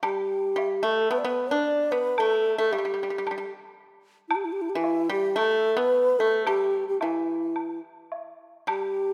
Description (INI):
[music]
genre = chinese traditional, Chinese chamber ensemble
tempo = 111 BPM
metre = 4/4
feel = rubato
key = G gong mode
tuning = A4 = 440 Hz
[part]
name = breathy mellow low xiao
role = melody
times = 0.0-9.1 s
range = E4 to D5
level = -27 LUFS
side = equal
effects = none
[part]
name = pipa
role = second line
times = 0.0-9.1 s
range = E3 to D4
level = -32 LUFS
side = equal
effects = none
[part]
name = woodblock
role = percussion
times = 0.0-8.8 s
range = none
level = -35 LUFS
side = equal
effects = none
[sound]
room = moderate concert hall reverb, RT60 1.9 s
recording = none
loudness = -25 LUFS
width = mono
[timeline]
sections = 0.0-9.1 A section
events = none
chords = none